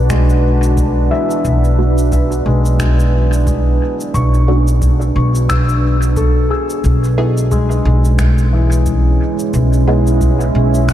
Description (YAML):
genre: ambient dub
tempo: 89 BPM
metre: 4/4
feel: swing 58% on 16ths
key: B dorian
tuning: A4 = 440 Hz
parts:
  - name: deep dark ambient pad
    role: sustained chords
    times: 0.0-10.9 s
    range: G#3 to F#5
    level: -19 LUFS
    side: right 2 dB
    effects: chorus, built-in reverb, vintage 12-bit sampler grit
  - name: felt-muted upright piano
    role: arpeggios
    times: 0.0-10.9 s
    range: E3 to E6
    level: -22 LUFS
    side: left 4 dB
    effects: vintage 12-bit sampler grit, ping-pong delay
  - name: upright bass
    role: bass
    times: 0.0-10.9 s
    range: B1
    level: -13 LUFS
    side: equal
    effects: none
  - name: electronic finger snaps and cabasa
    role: drums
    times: 0.1-10.9 s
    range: none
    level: -29 LUFS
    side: equal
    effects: overdrive, dub echo
  - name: electronic kick drum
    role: drums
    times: 0.1-10.9 s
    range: none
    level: -20 LUFS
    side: equal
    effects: none
  - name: filtered dub chord stab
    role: stabs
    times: 1.8-10.1 s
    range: A3 to G#4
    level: -24 LUFS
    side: right 2 dB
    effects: phaser, wide subtle chorus, dub echo
room: light reverb, digital ambience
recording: none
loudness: -11 LUFS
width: side -12 dB against mid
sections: 0.0-10.9 A section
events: filter sweep on synth stab 0.0-10.9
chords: 0.0 Bm7; 6.8 C#m7/B